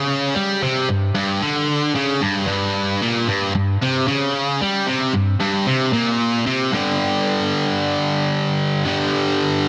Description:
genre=rock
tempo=113 BPM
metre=4/4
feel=straight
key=unclear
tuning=A4 = 440 Hz
part: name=distorted electric guitar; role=solo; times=0.0-9.7 s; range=G2 to G3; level=-20 LUFS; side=equal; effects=overdrive, analog delay
room=light reverb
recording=dense, heavily limited modern master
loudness=-20 LUFS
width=mono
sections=0.0-6.7 A section; 6.7-9.7 B section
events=none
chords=0.0 G5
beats=| 0.35 0.88 1.41 1.95 | 2.48 3.01 3.54 4.07 | 4.60 5.13 5.67 6.20 | 6.73 7.26 7.79 8.32 | 8.85 9.38

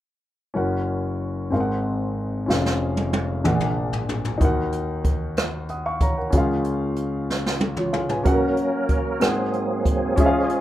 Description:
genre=slow gospel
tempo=62 BPM (dotted quarters)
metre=6/8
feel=straight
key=F# major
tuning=A4 = 440 Hz
part: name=warm concert grand piano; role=accompaniment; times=0.5-10.6 s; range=E#1 to D#6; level=-23 LUFS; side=left 1 dB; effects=none
part: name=jazz brush drum kit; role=drums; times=2.5-10.6 s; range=hi-hat, kick drum, rim click, snare drum, toms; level=-23 LUFS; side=equal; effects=none
part: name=bright tonewheel organ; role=sustained chords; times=8.2-10.6 s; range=E#3 to A#4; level=-23 LUFS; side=right 3 dB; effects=slow rotary speaker, chorus vibrato
room=moderate small room ambience, RT60 0.5 s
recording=rough home demo mix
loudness=-20 LUFS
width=side -13 dB against mid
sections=0.6-8.3 A section; 8.3-10.6 B section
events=drum fill 2.5-4.4, 7.3-8.3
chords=0.6 F#; 1.5 G#9; 2.5 C#/E#; 3.4 A#7b13; 4.4 D#m; 6.3 C#; 8.3 F#; 9.2 G#9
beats=| 0.56 1.52 | 2.48 3.45 | 4.41 5.37 | 6.33 7.30 | 8.26 9.22 | 10.18

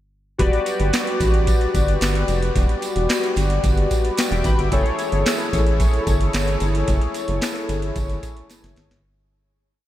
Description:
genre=early-eighties boogie funk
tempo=111 BPM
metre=4/4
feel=straight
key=E dorian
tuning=A4 = 440 Hz
part: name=chorused polysynth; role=accompaniment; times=0.4-9.0 s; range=E4 to B5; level=-22 LUFS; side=left 2 dB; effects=none
part: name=rubbery square bass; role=bass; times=0.4-9.0 s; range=E1 to A1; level=-21 LUFS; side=equal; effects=none
part: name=booming analog drum machine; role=drums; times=0.4-9.0 s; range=handclaps, hi-hat, kick drum, snare drum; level=-22 LUFS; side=equal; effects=none
part: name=tambourine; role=percussion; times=0.7-8.9 s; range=none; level=-36 LUFS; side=right 4 dB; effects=none
room=light reverb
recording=faint mains hum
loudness=-18 LUFS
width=side -13 dB against mid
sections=0.4-9.0 verse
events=fade-out 6.9-9.0; drum fill 8.5-9.0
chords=0.4 Em9; 4.7 F#m9 (rootless)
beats=| 0.39 0.93 1.47 2.01 | 2.56 3.10 3.64 4.18 | 4.72 5.26 5.80 6.34 | 6.88 7.42 7.96 8.50

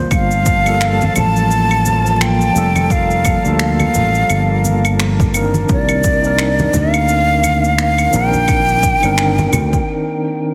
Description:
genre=sunset chillout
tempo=86 BPM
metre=4/4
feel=swing 58% on 16ths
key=G minor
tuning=A4 = 442 Hz
part: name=overdriven tine electric piano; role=accompaniment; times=0.0-10.5 s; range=Eb3 to C5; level=-23 LUFS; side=equal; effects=medium tremolo, tape echo
part: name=sustaining fretless electric bass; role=bass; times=0.0-9.8 s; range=F1 to D2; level=-19 LUFS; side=equal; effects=none
part: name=breathy hollow jazz flute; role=melody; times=0.1-9.9 s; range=D5 to A5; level=-19 LUFS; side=equal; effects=tape echo
part: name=airy breathy pad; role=sustained chords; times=0.1-9.8 s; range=F3 to A5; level=-25 LUFS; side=equal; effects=chorus
part: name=electronic claves, shaker and finger snaps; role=drums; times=0.1-9.9 s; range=none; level=-24 LUFS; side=equal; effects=overdrive
part: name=electronic kick drum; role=drums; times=0.1-9.8 s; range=none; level=-20 LUFS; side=equal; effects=overdrive
part: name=congas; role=percussion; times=1.0-9.7 s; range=none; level=-24 LUFS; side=equal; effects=none
room=light reverb, digital ambience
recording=heavily compressed radio sound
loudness=-14 LUFS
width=mono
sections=0.0-10.5 A section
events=break 9.9-10.5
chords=0.1 Gm9; 5.7 Cm9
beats=| 0.11 0.81 1.51 2.21 | 2.90 3.60 4.30 5.00 | 5.70 6.39 7.09 7.79 | 8.49 9.18 9.88

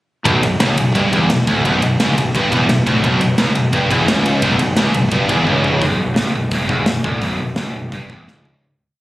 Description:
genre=heavy metal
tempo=172 BPM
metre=4/4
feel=straight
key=B minor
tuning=A4 = 439 Hz
part: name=high-gain distorted guitar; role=riff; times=0.2-5.8 s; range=B1 to G2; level=-17 LUFS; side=equal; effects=distortion
part: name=high-gain distorted guitar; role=riff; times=0.3-8.6 s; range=B1 to G2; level=-19 LUFS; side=equal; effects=distortion
part: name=fuzz fingered electric bass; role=bass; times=0.3-8.6 s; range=B0 to G1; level=-22 LUFS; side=equal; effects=overdrive
part: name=big rock drum kit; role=drums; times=0.3-8.5 s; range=hi-hat, kick drum, ride cymbal, snare drum, toms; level=-20 LUFS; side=equal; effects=none
room=light reverb, studio ambience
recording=recorded on a phone in the room, club reverb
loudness=-13 LUFS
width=side -17 dB against mid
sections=0.3-5.8 riff; 5.8-8.6 outro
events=drum fill 5.5-5.8, 8.3-8.6; fade-out 6.9-8.6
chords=0.3 Bm; 5.8 N.C.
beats=| 0.26 0.61 0.96 1.30 | 1.65 2.00 2.35 2.69 | 3.04 3.38 3.73 4.08 | 4.42 4.77 5.12 5.47 | 5.82 6.17 6.51 6.87 | 7.22 7.57 7.92 8.27

